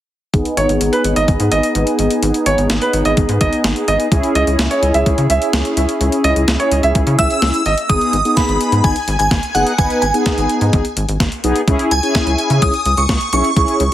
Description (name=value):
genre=synth-pop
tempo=127 BPM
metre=4/4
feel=straight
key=G# minor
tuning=A4 = 440 Hz
part: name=mellow synth brass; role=accompaniment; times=0.3-13.8 s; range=B3 to B4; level=-18 LUFS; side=equal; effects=chorus, low-pass filter
part: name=rubbery square bass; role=bass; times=0.3-13.9 s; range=F#1 to C#3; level=-18 LUFS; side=equal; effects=none
part: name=clean 12-bit digital drum machine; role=drums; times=0.3-13.9 s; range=hi-hat, kick drum, snare drum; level=-19 LUFS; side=equal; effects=overdrive
part: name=clear concert grand piano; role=second line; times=0.6-7.7 s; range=B4 to E5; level=-18 LUFS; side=right 2 dB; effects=digital delay
part: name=shimmering bell with halo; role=melody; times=7.2-13.9 s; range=F#5 to E6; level=-17 LUFS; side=equal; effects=ensemble chorus, phaser, digital delay
room=light reverb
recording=heavily compressed radio sound, multiband compression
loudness=-13 LUFS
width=side -12 dB against mid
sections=0.3-7.9 A section; 7.9-13.9 B section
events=filter sweep on analog polysynth 0.3-7.9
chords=0.3 G#m; 4.1 C#m; 7.7 G#5; 7.9 G#m; 11.7 C#m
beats=| 0.34 0.81 1.28 1.75 | 2.23 2.70 3.17 3.64 | 4.12 4.59 5.06 5.53 | 6.01 6.48 6.95 7.42 | 7.90 8.37 8.84 9.31 | 9.79 10.26 10.73 11.20 | 11.68 12.15 12.62 13.09 | 13.56